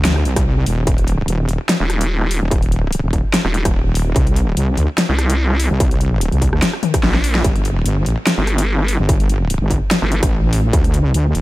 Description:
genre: heavy wobble dubstep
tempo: 146 BPM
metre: 4/4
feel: swing 54% on 16ths, half-time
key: G minor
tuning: A4 = 442 Hz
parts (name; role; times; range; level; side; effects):
- wobble bass; bass; 0.0-11.4 s; Eb1 to D2; -16 LUFS; equal; chorus, overdrive
- dubstep drum kit; drums; 0.0-11.4 s; hi-hat, rim click, snare drum, toms; -21 LUFS; left 1 dB; none
- electronic kick drum; drums; 0.4-10.8 s; none; -17 LUFS; equal; distortion
- vowel-sweep wobble bass; bass; 1.8-10.2 s; Eb1 to C2; -16 LUFS; equal; chorus, overdrive
room: little or no reverb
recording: none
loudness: -14 LUFS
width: side -18 dB against mid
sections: 0.0-11.4 A section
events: drum fill 6.8-7.4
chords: 0.0 Cmadd9; 0.9 N.C.; 4.2 Bbsus2; 7.4 Gsus2; 10.7 N.C.

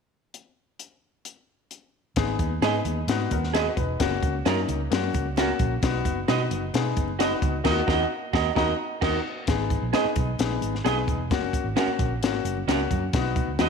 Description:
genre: uptempo 1960s-style soul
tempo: 131 BPM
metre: 4/4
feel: straight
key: G# minor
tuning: A4 = 444 Hz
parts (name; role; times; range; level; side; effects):
- compact cocktail drum kit; drums; 0.3-13.7 s; crash cymbal, hi-hat, kick drum, snare drum; -27 LUFS; left 2 dB; none
- clear upright piano; accompaniment; 2.2-13.7 s; A3 to A#5; -28 LUFS; left 9 dB; none
- vintage muted fingered electric bass; bass; 2.2-13.7 s; E1 to B2; -29 LUFS; right 2 dB; none
- congas; percussion; 2.2-13.7 s; none; -40 LUFS; right 13 dB; none
- electric guitar through a small old amp; stabs; 2.6-13.7 s; C#4 to D#5; -28 LUFS; right 14 dB; wide subtle chorus
room: moderate echo chamber reverb, RT60 1.7 s, small room ambience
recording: 1960s-style stereo with parts hard left and right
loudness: -22 LUFS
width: side -6 dB against mid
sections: 0.3-2.2 A section; 2.2-9.5 B section; 9.5-13.7 C section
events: band accent 7.7-9.5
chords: 0.3 N.C.; 2.2 G#m; 4.0 F#; 5.8 B; 7.7 D#m; 9.5 G#m; 11.3 F#; 13.1 B

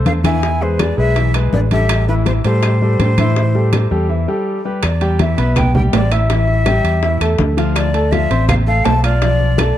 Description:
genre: latin, salsa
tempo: 164 BPM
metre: 4/4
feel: straight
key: A minor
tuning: A4 = 438 Hz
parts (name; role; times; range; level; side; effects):
- clear grand piano; accompaniment; 0.0-9.8 s; E3 to F6; -19 LUFS; left 1 dB; none
- fingered electric bass; bass; 0.0-9.7 s; A1 to A2; -15 LUFS; equal; none
- breathy jazz flute; melody; 0.1-9.8 s; B4 to A5; -21 LUFS; left 2 dB; none
- bongos; percussion; 0.1-9.8 s; none; -26 LUFS; left 7 dB; none
- congas; percussion; 0.1-9.8 s; none; -22 LUFS; equal; none
- timbales; percussion; 0.1-9.8 s; none; -25 LUFS; right 8 dB; none
- claves; percussion; 0.2-9.8 s; none; -30 LUFS; left 9 dB; none
room: light reverb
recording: dark, warm production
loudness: -13 LUFS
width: side -12 dB against mid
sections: 0.0-4.8 A section; 4.8-9.8 B section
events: break 4.1-4.8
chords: 0.4 E; 1.9 Am9; 6.3 A5; 7.8 Dm7; 9.2 Bm7b5

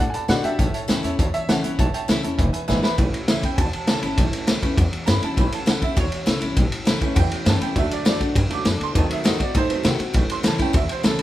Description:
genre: rockabilly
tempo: 201 BPM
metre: 4/4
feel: straight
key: A mixolydian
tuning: A4 = 441 Hz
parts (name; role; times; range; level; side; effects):
- clear upright piano; melody; 0.0-2.4 s; G4 to A5; -28 LUFS; right 1 dB; none
- picked steel-string acoustic guitar; accompaniment; 0.0-11.2 s; E2 to F#4; -27 LUFS; left 3 dB; none
- tack piano; accompaniment; 0.0-11.2 s; E3 to D6; -28 LUFS; right 4 dB; none
- upright bass; bass; 0.0-11.2 s; E1 to B#2; -25 LUFS; equal; none
- vintage drum kit; drums; 0.1-11.2 s; hi-hat, kick drum, ride cymbal, snare drum; -21 LUFS; equal; none
room: light reverb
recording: band playing live in one room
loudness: -18 LUFS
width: side -14 dB against mid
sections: 0.0-3.0 A section; 3.0-11.2 B section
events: drum fill 2.7; honky-tonk piano solo 3.0-11.2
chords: 0.0 D; 0.6 A; 2.4 E; 3.0 A; 7.8 D; 9.0 D#dim7; 10.1 A

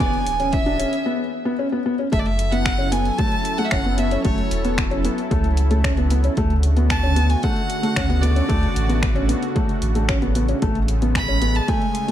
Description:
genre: piano and strings electronica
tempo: 113 BPM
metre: 4/4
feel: straight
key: F# minor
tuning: A4 = 438 Hz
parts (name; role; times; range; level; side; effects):
- clear violin; melody; 0.0-12.1 s; C#5 to B5; -26 LUFS; right 2 dB; ping-pong delay
- lush unison pad; sustained chords; 0.0-12.1 s; C#3 to A4; -28 LUFS; equal; chorus, sidechain pumping
- felt-muted upright piano; riff; 0.0-12.1 s; A3 to D4; -24 LUFS; left 2 dB; ping-pong delay
- warm sub bass; bass; 0.0-11.6 s; D1 to D2; -21 LUFS; equal; sidechain pumping
- deep house drum kit; drums; 0.0-12.1 s; finger snaps, hi-hat; -29 LUFS; left 1 dB; overdrive, high-pass filter on hats, studio reverb, high-pass filter on snare
- electronic kick drum; drums; 0.0-11.8 s; none; -24 LUFS; equal; overdrive, studio reverb
room: light reverb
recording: dark, warm production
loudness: -18 LUFS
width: side -11 dB against mid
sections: 0.0-2.1 A section; 2.1-12.1 B section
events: build-up 0.0-2.1; break 1.1-2.1; drop 2.1-12.1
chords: 0.0 E7; 2.1 F#m7; 6.4 Dmaj7; 10.6 Amaj9

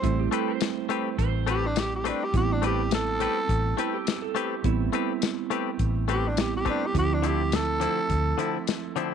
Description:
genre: straight-eighth soul blues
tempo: 104 BPM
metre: 4/4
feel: swing 55% on 16ths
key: A minor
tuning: A4 = 440 Hz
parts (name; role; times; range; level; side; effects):
- growling tenor saxophone; melody; 0.0-8.7 s; D4 to C5; -29 LUFS; equal; tape echo
- electric slide guitar; second line; 0.0-4.9 s; E4 to C5; -35 LUFS; right 14 dB; none
- bell-like tine electric piano; accompaniment; 0.0-9.1 s; F3 to E4; -30 LUFS; right 15 dB; none
- vintage muted fingered electric bass; bass; 0.0-8.3 s; A1 to D2; -27 LUFS; equal; none
- warm soul drum kit; drums; 0.0-9.1 s; hi-hat, kick drum, snare drum, tambourine; -29 LUFS; left 5 dB; none
- direct-recorded clean electric guitar; stabs; 0.3-9.1 s; D3 to B4; -31 LUFS; left 11 dB; none
room: light reverb, small room ambience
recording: 1960s-style stereo with parts hard left and right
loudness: -24 LUFS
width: side -7 dB against mid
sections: 0.0-9.1 A section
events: none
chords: 0.0 Am9; 6.9 Dm9

